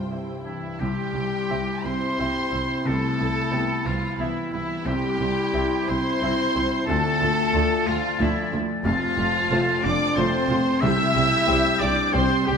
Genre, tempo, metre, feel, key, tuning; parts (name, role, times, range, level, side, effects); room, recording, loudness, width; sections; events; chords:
cinematic, emotional film score for orchestra; 90 BPM; 3/4; rubato; C major; A4 = 443 Hz
muted studio violin section; melody; 0.0-12.6 s; C5 to E6; -30 LUFS; left 1 dB
muted symphonic violin section; second line; 0.0-12.6 s; E4 to G5; -30 LUFS; left 2 dB
felt-muted upright piano; accompaniment; 0.0-12.6 s; F1 to E5; -29 LUFS; left 2 dB
muted symphonic viola section; accompaniment; 0.0-12.5 s; F3 to G4; -35 LUFS; right 1 dB
mellow French horn section; sustained chords; 0.0-12.6 s; E3 to E4; -28 LUFS; left 2 dB
muted symphonic cello section; bass; 0.0-12.6 s; C2 to G3; -32 LUFS; right 3 dB
muted symphonic double bass section; bass; 0.0-12.6 s; F1 to D2; -31 LUFS; right 4 dB
clear oboe; second line; 0.4-12.6 s; E4 to E5; -29 LUFS; right 2 dB
mellow clarinet; second line; 0.8-12.6 s; C4 to F4; -33 LUFS; equal
mellow hollow large flute ensemble; second line; 0.8-12.6 s; B5 to A6; -32 LUFS; left 1 dB
timpani; percussion; 4.9-5.8, 10.8-11.8 s; C3; -30 LUFS; left 1 dB
wet scoring stage reverb, RT60 1.9 s; minimal, uncompressed stereo recording; -20 LUFS; side -6 dB against mid
0.8-12.6 A section
0.0 C; 2.9 Amadd9/C; 4.9 C; 6.9 Dm; 8.9 F; 10.8 C